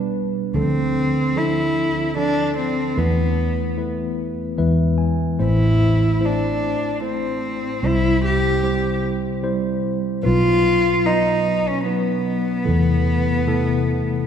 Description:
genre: acoustic folk-pop ballad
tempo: 74 BPM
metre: 3/4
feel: straight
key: A minor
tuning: A4 = 438 Hz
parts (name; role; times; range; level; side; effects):
- tine electric piano; accompaniment; 0.0-14.3 s; A1 to G#5; -22 LUFS; equal; slow stereo tremolo
- vintage muted fingered electric bass; bass; 0.5-14.0 s; A1 to E2; -22 LUFS; equal; none
- warm cello; melody; 0.6-14.3 s; B3 to G4; -21 LUFS; equal; none
room: wet church reverb, RT60 2.8 s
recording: recorded in a church or concert hall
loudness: -17 LUFS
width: side -8 dB against mid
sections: 0.0-14.3 A section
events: none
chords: 0.0 G/B; 0.5 Dm7; 3.0 Esus4; 4.6 E; 5.4 Am; 7.8 C; 10.2 B; 12.7 Am/E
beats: | 0.55 1.35 2.15 | 2.96 3.77 4.58 | 5.40 6.21 7.02 | 7.83 8.64 9.44 | 10.25 11.05 11.86 | 12.66 13.47

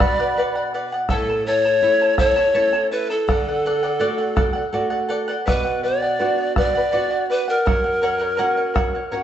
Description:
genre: andean folk, Andean ensemble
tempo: 82 BPM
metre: 3/4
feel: straight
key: B minor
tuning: A4 = 440 Hz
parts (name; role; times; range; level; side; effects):
- breathy bright pan flute; melody; 0.0-9.2 s; A4 to D5; -20 LUFS; left 1 dB; none
- mellow quena; second line; 0.0-0.7 s; B5; -27 LUFS; right 2 dB; none
- charango; accompaniment; 0.0-9.2 s; E4 to A5; -24 LUFS; equal; none
- flamenco guitar; accompaniment; 0.0-9.2 s; F#2 to F#4; -28 LUFS; right 3 dB; none
- bombo; percussion; 0.0-9.2 s; none; -22 LUFS; equal; none
room: wet large studio reverb, RT60 1.0 s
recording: band playing live in one room, nothing above 8.0 kHz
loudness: -17 LUFS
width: side -10 dB against mid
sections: 0.0-1.1 A section; 1.1-9.2 B section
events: none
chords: 0.0 Bm; 1.1 A; 3.3 D; 5.5 Bm; 7.7 F#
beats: 0.36 | 1.09 1.82 2.55 | 3.28 4.01 4.74 | 5.47 6.20 6.93 | 7.66 8.39 9.12

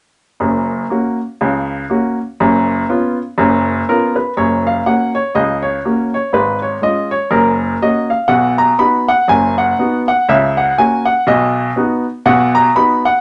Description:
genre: jazz, stride piano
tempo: 122 BPM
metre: 4/4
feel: swing 59% on 8ths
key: F# major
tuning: A4 = 438 Hz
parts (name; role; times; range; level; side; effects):
- clear upright piano; solo; 0.4-13.2 s; F#1 to B5; -14 LUFS; equal; none
room: wet studio ambience, RT60 0.4 s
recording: nothing above 10.8 kHz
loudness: -15 LUFS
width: mono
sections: 0.4-4.4 A section; 4.4-13.2 B section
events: none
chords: 0.4 F#; 2.4 C#7/F#; 4.4 F#; 6.3 C#/G#; 7.3 F#; 8.3 B; 10.3 F#/C#; 11.3 B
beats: | 0.41 0.91 1.40 1.90 | 2.39 2.88 3.38 3.87 | 4.36 4.86 5.35 5.84 | 6.34 6.83 7.32 7.82 | 8.31 8.80 9.30 9.79 | 10.29 10.78 11.27 11.77 | 12.26 12.76

